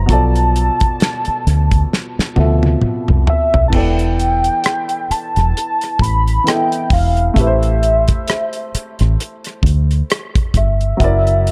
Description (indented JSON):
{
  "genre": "R&B, neo-soul",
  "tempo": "66 BPM",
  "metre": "4/4",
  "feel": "swing 58% on 16ths",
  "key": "unclear",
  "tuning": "A4 = 440 Hz",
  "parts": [
    { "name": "warm velvety synth lead", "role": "melody", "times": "0.0-11.5 s", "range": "E5 to B5", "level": "-20 LUFS", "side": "equal", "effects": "chorus, analog delay" },
    { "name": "warm upright piano", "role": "accompaniment", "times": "0.0-11.5 s", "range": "B2 to E5", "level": "-24 LUFS", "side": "equal", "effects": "none" },
    { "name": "deep dub fingered electric bass", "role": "bass", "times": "0.0-11.5 s", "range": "E1 to D2", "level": "-17 LUFS", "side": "equal", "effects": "none" },
    { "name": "damped 70s drum kit", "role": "drums", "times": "0.1-11.5 s", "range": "crash cymbal, hi-hat, kick drum, rim click, snare drum, toms", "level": "-20 LUFS", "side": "equal", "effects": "none" }
  ],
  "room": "small room ambience",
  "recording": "echo-heavy mix",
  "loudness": "-15 LUFS",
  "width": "mono",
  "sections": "0.0-3.7 A section; 3.7-11.5 B section",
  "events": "drum fill 1.9-3.7",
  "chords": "0.1 Bm7b5; 3.7 E7sus4; 7.4 Am7; 11.0 F#7b13"
}